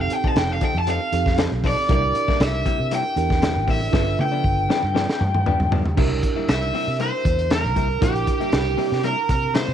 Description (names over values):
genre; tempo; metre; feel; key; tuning
straight-eighth soul blues; 118 BPM; 4/4; swing 53% on 16ths; C mixolydian; A4 = 435 Hz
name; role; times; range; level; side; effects
cranked stack guitar; melody; 0.0-9.7 s; G4 to A5; -23 LUFS; equal; overdrive
mellow reed electric piano; accompaniment; 0.0-9.7 s; C4 to B4; -29 LUFS; right 14 dB; none
direct-recorded clean electric guitar; stabs; 0.0-9.7 s; G2 to A4; -30 LUFS; left 11 dB; none
vintage muted fingered electric bass; bass; 0.0-9.7 s; F1 to C3; -24 LUFS; equal; none
crunchy breakbeat drum kit; drums; 0.1-9.7 s; crash cymbal, hi-hat, kick drum, snare drum, toms; -23 LUFS; equal; none
room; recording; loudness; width
light reverb, small room ambience; 1960s-style stereo with parts hard left and right; -18 LUFS; side -9 dB against mid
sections
0.0-6.0 A section; 6.0-9.7 B section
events
overdriven electric guitar solo 0.0-6.0; drum fill 3.9-6.0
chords
0.0 F7; 1.9 C7; 3.9 G7; 6.0 C7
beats
0.36 0.87 1.38 | 1.89 2.40 2.92 3.42 | 3.94 4.45 4.96 5.46 | 5.97 6.49 7.00 7.50 | 8.02 8.53 9.04 9.55